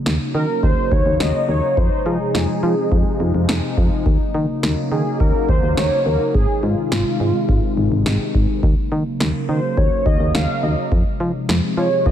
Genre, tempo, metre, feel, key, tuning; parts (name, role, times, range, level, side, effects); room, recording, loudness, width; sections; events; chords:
synth-pop; 105 BPM; 4/4; straight; Eb dorian; A4 = 435 Hz
sweeping resonant pad; sustained chords; 0.0-12.1 s; C3 to Eb4; -23 LUFS; left 2 dB; chorus
solid FM bass; bass; 0.1-12.1 s; Ab1 to F3; -20 LUFS; equal
electro analog drum machine; drums; 0.1-12.1 s; kick drum, snare drum; -21 LUFS; equal
warm velvety synth lead; melody; 0.3-12.1 s; F4 to F5; -22 LUFS; right 1 dB; chorus, tape echo
moderate plate reverb, RT60 2.6 s; dreamy mix soaked in reverb; -16 LUFS; side -10 dB against mid
0.0-12.1 A section
0.0 Ebm7; 1.8 Fm7; 4.1 Ebm7; 6.3 Ab; 8.6 Ebm7; 10.9 Fm7